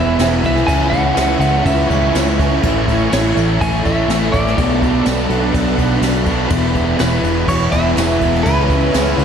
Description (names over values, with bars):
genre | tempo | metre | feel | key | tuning
rock, shoegaze and dream pop | 123 BPM | 4/4 | straight | A major | A4 = 443 Hz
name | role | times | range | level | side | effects
clean electric guitar | melody | 0.0-9.2 s | B4 to G#5 | -21 LUFS | right 1 dB | harmonic tremolo, tape echo
string machine, full ensemble | sustained chords | 0.0-9.2 s | D4 to C#6 | -22 LUFS | right 1 dB | ensemble chorus
biting overdriven guitar | riff | 0.0-9.2 s | A2 to E4 | -21 LUFS | right 8 dB | reverse reverb
thick fuzz guitar | riff | 0.0-9.2 s | E2 to C#4 | -18 LUFS | left 4 dB | distortion, ensemble chorus
vintage muted fingered electric bass | bass | 0.0-9.2 s | E1 to C#2 | -20 LUFS | equal | none
jazz brush drum kit | drums | 0.2-9.2 s | crash cymbal, kick drum, ride cymbal, snare drum | -21 LUFS | equal | none
tambourine | percussion | 0.2-9.1 s | none | -32 LUFS | right 14 dB | none
room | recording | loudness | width
wet lush hall reverb, RT60 1.5 s, small room ambience | dreamy mix soaked in reverb | -13 LUFS | side -7 dB against mid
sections
0.0-9.2 A section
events
none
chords
0.0 E; 0.7 C#m7; 2.6 Amaj7; 4.6 Bm7; 6.5 E; 8.5 C#m7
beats
0.20 | 0.68 1.17 1.66 2.14 | 2.63 3.12 3.60 4.09 | 4.58 5.06 5.55 6.03 | 6.52 7.00 7.49 7.98 | 8.46 8.95